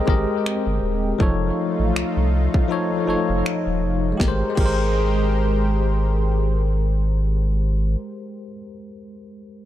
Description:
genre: contemporary R&B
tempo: 80 BPM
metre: 4/4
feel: swing 58% on 16ths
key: Ab major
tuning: A4 = 440 Hz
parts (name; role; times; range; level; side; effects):
- bell-like tine electric piano; accompaniment; 0.0-9.7 s; F3 to Eb5; -24 LUFS; left 3 dB; medium stereo tremolo, tape echo
- lush unison pad; sustained chords; 0.0-8.0 s; Ab3 to C5; -27 LUFS; right 1 dB; chorus
- warm sub bass; bass; 0.1-8.0 s; Eb1 to C2; -21 LUFS; equal; none
- trap drum kit; drums; 0.1-4.8 s; crash cymbal, finger snaps, kick drum, snare drum; -21 LUFS; equal; none
room: little or no reverb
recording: echo-heavy mix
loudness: -18 LUFS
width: side -12 dB against mid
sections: 0.0-4.2 A section; 4.2-7.2 B section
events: kick muted 2.7-4.2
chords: 0.0 Abmaj9; 1.2 F7b13; 4.2 Abmaj9

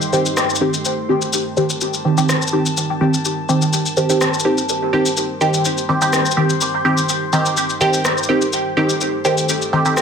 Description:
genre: dub techno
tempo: 125 BPM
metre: 4/4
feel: straight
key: C dorian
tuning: A4 = 440 Hz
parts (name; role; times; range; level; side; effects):
- dark analog pad; sustained chords; 0.0-10.0 s; G3 to Eb5; -31 LUFS; right 1 dB; lush chorus
- electronic shaker and rim click; drums; 0.0-10.0 s; none; -21 LUFS; left 3 dB; none
- drifting glass-harmonics texture; texture; 0.0-10.0 s; A3 to A5; -27 LUFS; left 3 dB; chorus, built-in reverb
- filtered dub chord stab; stabs; 0.1-10.0 s; Eb3 to G4; -16 LUFS; right 1 dB; chorus, phaser, dub echo
room: moderate echo chamber reverb, RT60 1.4 s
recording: none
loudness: -15 LUFS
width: side -6 dB against mid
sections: 0.0-10.0 A section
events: none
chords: 0.0 Cm

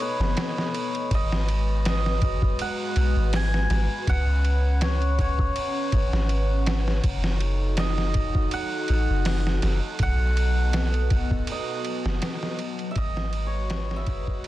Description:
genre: trip hop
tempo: 81 BPM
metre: 4/4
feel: swing 55% on 16ths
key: F# dorian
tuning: A4 = 439 Hz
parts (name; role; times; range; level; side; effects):
- hammered dulcimer; melody; 0.0-14.5 s; B4 to G#5; -31 LUFS; equal; tape echo
- dark analog pad; sustained chords; 0.0-14.5 s; G#3 to F#5; -32 LUFS; left 1 dB; chorus, phaser
- trip hop sampler-style drum kit; drums; 0.0-14.5 s; hi-hat, kick drum, ride cymbal, snare drum; -28 LUFS; equal; none
- soft 808-style bass; bass; 0.2-14.4 s; F#1 to C#2; -24 LUFS; equal; none
- backwards swelling texture; texture; 8.3-14.5 s; F#3 to F#4; -39 LUFS; left 1 dB; built-in reverb
room: little or no reverb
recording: dense, heavily limited modern master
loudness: -22 LUFS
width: side -15 dB against mid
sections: 0.0-14.5 A section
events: fade-out 11.0-14.5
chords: 0.0 B7; 1.1 G#m7; 4.1 C#7sus4; 7.0 F#m6; 10.0 B7; 13.0 G#m7

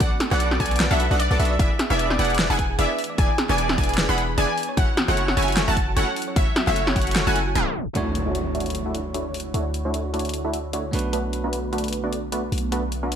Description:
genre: future bass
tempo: 151 BPM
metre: 4/4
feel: swing 56% on 16ths, half-time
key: unclear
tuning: A4 = 440 Hz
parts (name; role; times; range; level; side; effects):
- wide unison pluck; melody; 0.0-7.9 s; D5 to B5; -26 LUFS; equal; lush chorus, sidechain pumping, dub echo
- ethereal airy pad; sustained chords; 0.0-13.2 s; D3 to C#5; -36 LUFS; right 2 dB; ensemble chorus, built-in reverb, phaser, sidechain pumping
- airy dreamy lead; arpeggios; 0.0-7.7 s; C#5 to F#5; -32 LUFS; equal; chorus, sidechain pumping
- thumb-piano-like synth pluck; arpeggios; 0.0-7.9 s; E4 to D5; -35 LUFS; right 3 dB; chorus, sidechain pumping, ping-pong delay
- supersaw stab; riff; 0.0-13.2 s; A3 to F#5; -27 LUFS; right 1 dB; sidechain pumping, low-pass filter, ping-pong delay
- warm 808-style bass; bass; 0.0-13.2 s; E1 to D2; -26 LUFS; equal; sidechain pumping
- electronic kick drum; drums; 0.0-7.0 s; none; -22 LUFS; equal; small room ambience
- pop drum kit; drums; 0.0-13.2 s; hi-hat, snare drum; -26 LUFS; equal; small room ambience
- bell-like tine electric piano; accompaniment; 7.9-13.2 s; A3 to C#5; -32 LUFS; right 4 dB; sidechain pumping, ping-pong delay
- impact; sound effects; 8.0-9.5 s; none; -32 LUFS; equal; none
room: light reverb, digital ambience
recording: tape stop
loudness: -20 LUFS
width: side -8 dB against mid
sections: 0.0-8.0 A section; 8.0-13.2 B section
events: drop 0.0-8.0; tape stop 7.6-8.0; impact 8.0-9.5; filter sweep on ambient pad 8.0-13.2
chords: 0.0 Bm7; 1.6 E7; 4.6 F#m7; 8.0 Dmaj9; 10.9 Bm7

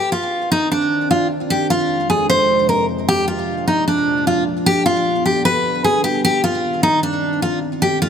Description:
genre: hip hop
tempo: 152 BPM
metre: 4/4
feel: half-time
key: C minor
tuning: A4 = 440 Hz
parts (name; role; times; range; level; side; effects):
- picked steel-string acoustic guitar; melody; 0.0-8.1 s; D4 to C5; -16 LUFS; equal; digital delay
- deep dark ambient pad; sustained chords; 0.4-8.1 s; F2 to D4; -22 LUFS; right 1 dB; chorus, built-in reverb
room: light reverb, studio reverb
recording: none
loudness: -15 LUFS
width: side -8 dB against mid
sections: 0.0-8.1 A section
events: none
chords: 0.0 Cmadd9; 1.5 Fm; 3.1 Bb; 4.7 G; 6.2 Cmadd9

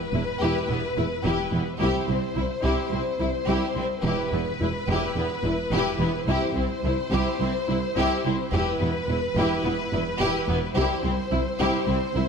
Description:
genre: cinematic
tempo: 107 BPM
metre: 4/4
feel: straight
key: E minor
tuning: A4 = 438 Hz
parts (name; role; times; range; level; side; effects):
- warm symphonic violin section; melody; 0.0-12.3 s; B4 to C5; -30 LUFS; left 2 dB; none
- clear symphonic violin section; second line; 0.1-12.2 s; B3 to G4; -29 LUFS; left 4 dB; none
- rich symphonic viola section; accompaniment; 0.1-12.2 s; E4; -30 LUFS; right 1 dB; none
- rich symphonic cello section; bass; 0.1-12.2 s; C2 to E2; -29 LUFS; right 2 dB; none
- rich symphonic double bass section; bass; 0.1-12.2 s; E1 to C2; -29 LUFS; right 2 dB; none
room: moderate scoring stage reverb, RT60 1.9 s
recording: none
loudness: -22 LUFS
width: side -6 dB against mid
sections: 0.0-12.3 A section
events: none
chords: 0.0 Em; 1.8 C; 4.0 Em; 6.3 C; 8.5 Em; 10.8 C

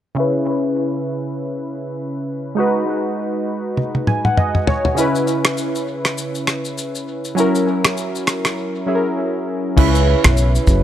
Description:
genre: afrobeats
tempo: 100 BPM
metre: 4/4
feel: swing 58% on 16ths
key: C# dorian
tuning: A4 = 440 Hz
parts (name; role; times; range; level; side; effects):
- warm analog keys; accompaniment; 0.1-10.8 s; C#3 to G#5; -19 LUFS; equal; chorus, low-pass filter, analog delay
- damped 70s drum kit; drums; 3.8-10.8 s; crash cymbal, finger snaps, kick drum, rim click, shaker, toms; -18 LUFS; equal; none
- fingered electric bass; bass; 9.8-10.8 s; F#1 to C#2; -16 LUFS; equal; none
room: light reverb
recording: echo-heavy mix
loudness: -16 LUFS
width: side -11 dB against mid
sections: 0.2-9.8 A section; 9.8-10.8 B section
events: filter sweep on synth keys 0.2-9.8; drum fill 3.8-5.0; synth keys fill 3.8-5.0; break 8.6-9.8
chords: 0.2 C#m7; 2.6 G#m7; 5.0 C#m7; 7.4 F#7; 9.8 C#m7

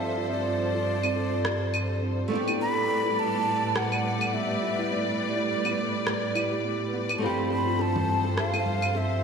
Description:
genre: sunset chillout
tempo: 104 BPM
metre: 4/4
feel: swing 56% on 16ths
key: unclear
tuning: A4 = 440 Hz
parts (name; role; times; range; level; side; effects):
- breathy mellow silver concert flute; melody; 0.0-9.2 s; D5 to B5; -30 LUFS; right 1 dB; tape echo
- nylon-string guitar; accompaniment; 0.0-9.2 s; A3 to G4; -32 LUFS; left 1 dB; auto-pan, diffuse ambient delay
- rich studio string section; sustained chords; 0.0-9.2 s; G2 to D5; -28 LUFS; equal; none
- kalimba; arpeggios; 0.0-9.1 s; B3 to D5; -33 LUFS; right 4 dB; low-pass filter, diffuse ambient delay
- electronic claves and rim click; drums; 1.0-8.9 s; none; -31 LUFS; left 1 dB; none
- bongos and congas; percussion; 7.5-9.1 s; none; -35 LUFS; left 4 dB; none
room: wet lush hall reverb, RT60 1.9 s, small room ambience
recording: dreamy mix soaked in reverb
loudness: -24 LUFS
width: side -6 dB against mid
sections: 0.0-9.2 A section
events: none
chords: 0.0 G9sus4; 2.3 A9sus4; 7.2 G9sus4

